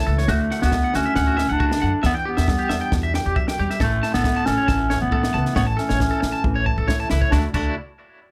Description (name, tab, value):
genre	highlife guitar band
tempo	136 BPM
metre	4/4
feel	straight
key	D major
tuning	A4 = 441 Hz
part	flamenco guitar	accompaniment	0.0-7.8 s	A2 to B4	-32 LUFS	equal	none
part	electric guitar at the edge of break-up	arpeggios	0.0-7.7 s	E4 to A5	-29 LUFS	equal	tremolo
part	upright bass	bass	0.0-7.7 s	A1 to F#2	-26 LUFS	equal	none
part	compact cocktail drum kit	drums	0.2-7.6 s	crash cymbal, kick drum, snare drum, toms	-27 LUFS	equal	none
part	growling clarinet	melody	0.3-7.7 s	A3 to D4	-25 LUFS	equal	none
room	light reverb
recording	none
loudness	-21 LUFS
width	mono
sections	0.0-7.3 A section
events	drum fill 6.4-7.3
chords	0.3 Dadd9; 2.0 Em7; 3.8 Aadd9; 7.3 Dadd9